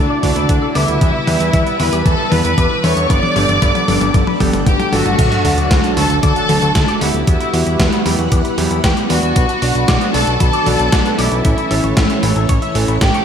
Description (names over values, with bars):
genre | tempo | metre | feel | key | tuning
italo disco | 115 BPM | 4/4 | straight | D major | A4 = 437 Hz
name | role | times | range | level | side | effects
dark studio violin section | melody | 0.0-13.2 s | D4 to D6 | -19 LUFS | equal | digital delay
string machine, full ensemble | sustained chords | 0.0-13.2 s | E3 to F#5 | -22 LUFS | equal | ensemble chorus
electric guitar with an envelope filter | arpeggios | 0.0-13.2 s | B3 to G5 | -24 LUFS | left 2 dB | analog chorus, low-pass filter, digital delay
fat analog bass | bass | 0.0-13.1 s | G1 to E2 | -19 LUFS | equal | none
warm electric grand piano | stabs | 0.2-12.9 s | E3 to D5 | -22 LUFS | right 2 dB | vintage 12-bit sampler grit, low-pass filter
dusty soul sampler-style drum kit | drums | 0.2-13.2 s | crash cymbal, hi-hat, snare drum, toms | -20 LUFS | left 1 dB | overdrive, studio reverb, gated reverb
electronic kick drum | drums | 0.2-13.1 s | none | -17 LUFS | equal | studio reverb
sub drop | sound effects | 5.2-7.3 s | none | -24 LUFS | equal | none
room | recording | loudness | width
moderate lush hall reverb, RT60 1.8 s, digital ambience | bright 1980s-style digital production | -12 LUFS | side -8 dB against mid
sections
0.0-5.2 A section; 5.2-13.2 B section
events
drum fill 0.0-5.2; filter sweep on string machine 0.0-5.2; impact 5.2-7.3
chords
0.0 Dadd9; 1.0 Em; 3.1 Gadd9; 5.2 D; 7.3 Emadd9; 9.4 Bm; 11.4 A